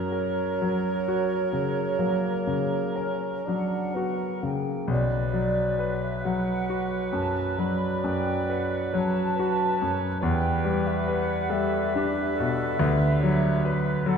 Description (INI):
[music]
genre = classical, romantic movement for piano and orchestra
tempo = 38-49 BPM (dotted quarters)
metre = 12/8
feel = rubato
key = B minor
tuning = A4 = 441 Hz
[part]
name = clear concert grand piano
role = melody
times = 0.0-14.2 s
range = B1 to B4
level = -26 LUFS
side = left 1 dB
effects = none
[part]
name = clear clarinet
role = second line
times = 0.0-14.2 s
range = G4 to D5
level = -35 LUFS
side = left 2 dB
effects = none
[part]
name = clear oboe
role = second line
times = 0.0-14.2 s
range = A#4 to B4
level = -36 LUFS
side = right 3 dB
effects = none
[part]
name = hollow large flute ensemble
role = second line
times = 0.0-14.2 s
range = C#5 to B5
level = -30 LUFS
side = right 2 dB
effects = none
[part]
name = mellow bassoon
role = accompaniment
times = 0.0-14.2 s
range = F#3 to D4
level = -34 LUFS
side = right 4 dB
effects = none
[sound]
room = wet concert hall reverb, RT60 2.0 s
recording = dark, warm production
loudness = -23 LUFS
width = side -6 dB against mid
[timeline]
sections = 0.0-14.2 A section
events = none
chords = 0.0 F#; 4.9 Bm; 10.2 Em7; 12.8 Bm/D